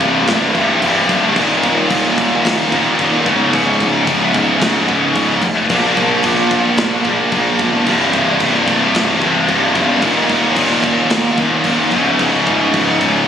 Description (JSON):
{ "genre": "heavy metal", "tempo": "111 BPM", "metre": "4/4", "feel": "straight", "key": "C phrygian", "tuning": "A4 = 444 Hz", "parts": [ { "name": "distorted electric guitar", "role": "riff", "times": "0.0-13.3 s", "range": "C2 to Bb3", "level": "-17 LUFS", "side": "equal", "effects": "overdrive" }, { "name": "heavy high-gain guitar", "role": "riff", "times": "0.0-13.3 s", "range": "C2 to F3", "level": "-17 LUFS", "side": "left 7 dB", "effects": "distortion" }, { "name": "high-gain distorted guitar", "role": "riff", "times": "0.0-13.3 s", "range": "C2 to F3", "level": "-19 LUFS", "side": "right 8 dB", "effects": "distortion" }, { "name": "fuzz picked electric bass", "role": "bass", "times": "0.0-13.3 s", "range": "C1 to Bb1", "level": "-21 LUFS", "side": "equal", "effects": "overdrive" }, { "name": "big rock drum kit", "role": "drums", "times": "0.0-13.1 s", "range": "crash cymbal, kick drum, snare drum", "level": "-22 LUFS", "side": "equal", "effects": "none" } ], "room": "light reverb, studio ambience", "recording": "recorded on a phone in the room, club reverb, compression", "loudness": "-12 LUFS", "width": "side -8 dB against mid", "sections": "0.0-13.3 A section", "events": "half time 0.0-13.3", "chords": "0.0 C5; 1.4 Eb5; 3.3 Db5; 5.7 Bb5; 7.9 C5; 10.0 Eb5; 11.9 Db5" }